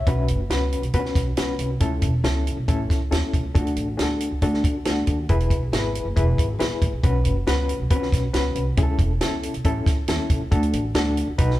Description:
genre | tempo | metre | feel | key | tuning
uptempo 1960s-style soul | 138 BPM | 4/4 | straight | unclear | A4 = 438 Hz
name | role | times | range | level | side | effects
overdriven reed electric piano | accompaniment | 0.0-11.6 s | B3 to E5 | -26 LUFS | left 2 dB | fast tremolo
upright bass | bass | 0.0-11.6 s | E1 to D#2 | -24 LUFS | right 1 dB | none
compact cocktail drum kit | drums | 0.1-11.6 s | hi-hat, kick drum, snare drum | -23 LUFS | equal | none
room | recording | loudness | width
moderate large studio reverb, RT60 1.5 s | band playing live in one room | -20 LUFS | side -15 dB against mid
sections
0.0-11.6 A section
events
reed electric piano fill 11.4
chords
0.1 Bsus2; 1.8 A; 3.6 D; 5.3 E; 7.0 Bsus2; 8.8 A; 10.5 D

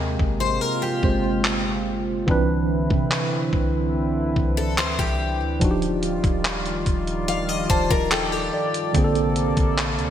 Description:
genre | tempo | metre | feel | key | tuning
contemporary R&B | 72 BPM | 4/4 | straight | unclear | A4 = 440 Hz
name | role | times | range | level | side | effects
tine electric piano | accompaniment | 0.0-10.1 s | D3 to A5 | -25 LUFS | right 3 dB | medium stereo tremolo
chorused pulse-width pad | sustained chords | 0.0-10.1 s | C3 to G5 | -27 LUFS | left 1 dB | none
clean 808-style bass | bass | 0.0-10.1 s | Eb1 to C3 | -28 LUFS | equal | none
detuned 8-bit digital drum machine | drums | 0.2-10.1 s | handclaps, hi-hat, kick drum | -24 LUFS | equal | vintage 12-bit sampler grit, gated reverb
picked steel-string acoustic guitar | arpeggios | 0.4-8.9 s | G4 to F5 | -27 LUFS | left 5 dB | analog chorus, digital delay
room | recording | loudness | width
moderate lush hall reverb, RT60 2.2 s | bright 1980s-style digital production | -20 LUFS | side -10 dB against mid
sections
0.0-10.1 A section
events
break 0.0-2.3; tine electric piano fill 7.3-8.9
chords
0.0 Abmaj9; 2.3 Cmaj9; 5.6 Ebmaj9; 8.9 Bbmaj9

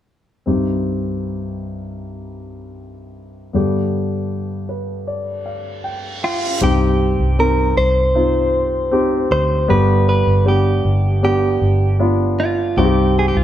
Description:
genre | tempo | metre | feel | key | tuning
pop ballad | 78 BPM | 4/4 | straight | C minor | A4 = 435 Hz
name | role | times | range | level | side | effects
dark concert grand piano | accompaniment | 0.5-13.4 s | C2 to G5 | -19 LUFS | left 1 dB | none
reverse cymbal | sound effects | 5.7-6.6 s | none | -28 LUFS | right 4 dB | none
direct-recorded clean electric guitar | melody | 6.2-13.4 s | F4 to C5 | -19 LUFS | right 1 dB | spring reverb
vintage muted fingered electric bass | bass | 6.6-13.4 s | G1 to D2 | -17 LUFS | equal | none
room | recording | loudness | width
moderate stone room reverb, RT60 1.1 s | band playing live in one room | -15 LUFS | side -11 dB against mid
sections
0.5-6.6 A section; 6.6-13.4 B section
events
grand piano fill 4.3-6.6; reverse cymbal 5.7-6.6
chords
0.5 Cm; 3.5 G; 6.6 Cm; 9.7 G; 12.8 Cm

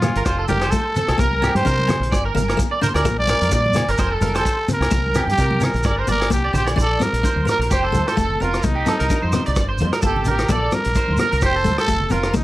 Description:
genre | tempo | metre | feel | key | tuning
highlife guitar band | 129 BPM | 4/4 | swing 55% on 16ths | Bb major | A4 = 440 Hz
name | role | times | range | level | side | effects
growling trumpet | melody | 0.0-12.4 s | Eb4 to D5 | -22 LUFS | equal | none
picked steel-string acoustic guitar | accompaniment | 0.0-12.4 s | A3 to D4 | -26 LUFS | left 4 dB | none
electric guitar at the edge of break-up | arpeggios | 0.0-12.3 s | G4 to D5 | -24 LUFS | right 4 dB | ensemble chorus, plate reverb, tape echo
deep dub fingered electric bass | bass | 0.0-12.4 s | F1 to C3 | -23 LUFS | equal | none
vintage drum kit | drums | 0.0-12.4 s | hi-hat, kick drum, rim click | -24 LUFS | equal | none
agogo bells | percussion | 0.0-6.8 s | none | -33 LUFS | left 3 dB | none
congas | percussion | 0.0-12.1 s | none | -28 LUFS | right 1 dB | none
shekere | percussion | 0.0-12.4 s | none | -29 LUFS | equal | none
room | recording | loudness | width
light reverb | none | -16 LUFS | side -16 dB against mid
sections
0.0-6.8 A section; 6.8-12.4 B section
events
none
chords
0.3 F; 1.2 C5; 2.1 Gm; 3.1 Bb; 4.0 F; 4.9 C5; 5.8 Gm; 6.8 Bb; 7.7 Fadd9; 8.6 Cm7; 9.6 Gm; 10.5 Bb; 11.4 Fadd9

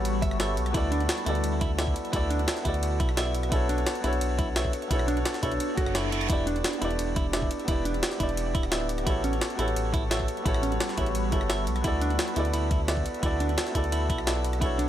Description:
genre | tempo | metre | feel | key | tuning
liquid drum and bass | 173 BPM | 4/4 | straight | unclear | A4 = 440 Hz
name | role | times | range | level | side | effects
felt-muted upright piano | accompaniment | 0.0-14.9 s | B3 to D5 | -30 LUFS | equal | tape echo
ethereal airy pad | sustained chords | 0.0-14.9 s | G3 to D6 | -37 LUFS | left 1 dB | ensemble chorus, built-in reverb, phaser, sidechain pumping
smooth gliding synth bass | bass | 0.0-14.9 s | D1 to D2 | -30 LUFS | equal | none
jungle sampler-style drum kit | drums | 0.1-14.9 s | hi-hat, ride cymbal, rim click, snare drum | -33 LUFS | equal | none
clean electric guitar | arpeggios | 0.2-14.9 s | C#4 to E5 | -33 LUFS | right 3 dB | tape echo
electronic kick drum | drums | 0.2-14.7 s | none | -29 LUFS | equal | none
reverse cymbal | sound effects | 5.8-6.3 s | none | -36 LUFS | right 6 dB | none
room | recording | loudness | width
digital ambience | none | -24 LUFS | side -11 dB against mid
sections
0.0-14.9 A section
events
reverse cymbal 5.8-6.3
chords
0.0 A13; 0.7 D69; 3.5 Bm9; 6.3 Em7; 9.1 A13; 11.8 D69

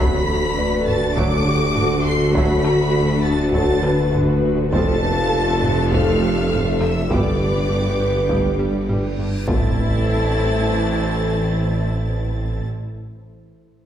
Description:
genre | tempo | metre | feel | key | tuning
cinematic, hybrid orchestral and electronic film score | 101 BPM | 4/4 | straight | A minor | A4 = 440 Hz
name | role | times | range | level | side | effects
rich studio violin section | melody | 0.0-12.6 s | D6 to D7 | -30 LUFS | left 1 dB | none
warm symphonic violin section | second line | 0.0-12.6 s | D5 to D6 | -28 LUFS | left 3 dB | none
rich symphonic viola section | accompaniment | 0.0-12.6 s | A3 to A4 | -28 LUFS | right 1 dB | none
bright trombone section | sustained chords | 0.0-12.6 s | E3 to C4 | -30 LUFS | right 2 dB | none
ethereal airy pad | sustained chords | 0.0-12.6 s | C3 to C5 | -29 LUFS | left 1 dB | none
mellow French horn section | sustained chords | 0.0-12.6 s | C4 to B4 | -25 LUFS | left 4 dB | none
fat analog bass | riff | 0.0-9.4 s | D2 to G3 | -27 LUFS | right 1 dB | none
pure sine sub bass | bass | 0.0-12.6 s | D1 to A1 | -30 LUFS | equal | none
rich studio cello section | bass | 0.0-12.6 s | D2 to A2 | -26 LUFS | right 1 dB | none
rich symphonic double bass section | bass | 0.0-12.6 s | F1 to D2 | -25 LUFS | right 1 dB | none
warm tuba | bass | 0.0-12.6 s | F1 to D2 | -26 LUFS | right 2 dB | none
dark grand piano | texture | 0.0-9.5 s | A3 to D5 | -34 LUFS | right 1 dB | none
taiko ensemble | drums | 0.9-10.6 s | none | -25 LUFS | equal | none
reverse cymbal and impact | sound effects | 9.2-13.4 s | none | -28 LUFS | equal | none
room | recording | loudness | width
wet recital hall reverb, RT60 1.5 s | recorded in a church or concert hall | -16 LUFS | side -10 dB against mid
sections
0.0-9.5 A section; 9.5-11.9 B section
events
reverse cymbal 9.2-9.5; impact 9.5-11.9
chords
0.0 D; 4.7 F; 7.1 G; 9.5 Am

